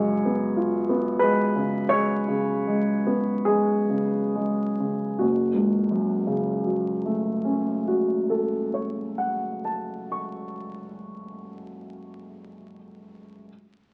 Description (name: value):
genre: classical, romantic nocturne for solo piano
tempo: 32-49 BPM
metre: 4/4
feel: rubato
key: F# minor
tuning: A4 = 440 Hz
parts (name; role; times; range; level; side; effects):
- warm grand piano; solo; 0.0-13.5 s; F#1 to C#6; -26 LUFS; equal; none
room: moderate large studio reverb, RT60 1.1 s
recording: very old 78 rpm record, vinyl crackle, nothing above 10.7 kHz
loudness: -25 LUFS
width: mono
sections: 0.0-5.2 A section; 5.2-11.3 B section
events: slowing down 0.0-5.2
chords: 0.0 C#7/F#; 5.2 F#m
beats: 0.57 1.91 3.47 | 5.21 6.75 8.27 9.78